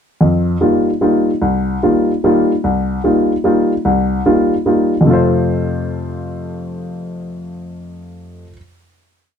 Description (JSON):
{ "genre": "jazz", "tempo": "149 BPM", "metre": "3/4", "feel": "swing 66% on 8ths", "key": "F mixolydian", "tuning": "A4 = 441 Hz", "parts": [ { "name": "dark baby grand piano", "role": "solo", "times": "0.2-8.6 s", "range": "C2 to C5", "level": "-14 LUFS", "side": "equal", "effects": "none" } ], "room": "light reverb", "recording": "dark, warm production", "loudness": "-12 LUFS", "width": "side -8 dB against mid", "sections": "0.2-5.0 A section; 5.0-7.5 final chord", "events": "none", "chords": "0.2 F9sus4; 5.0 F", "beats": "| 0.20 0.61 1.01 | 1.41 1.81 2.22 | 2.62 3.02 3.43 | 3.83 4.23 4.64 | 5.04 5.44 5.85 | 6.25 6.65 7.05" }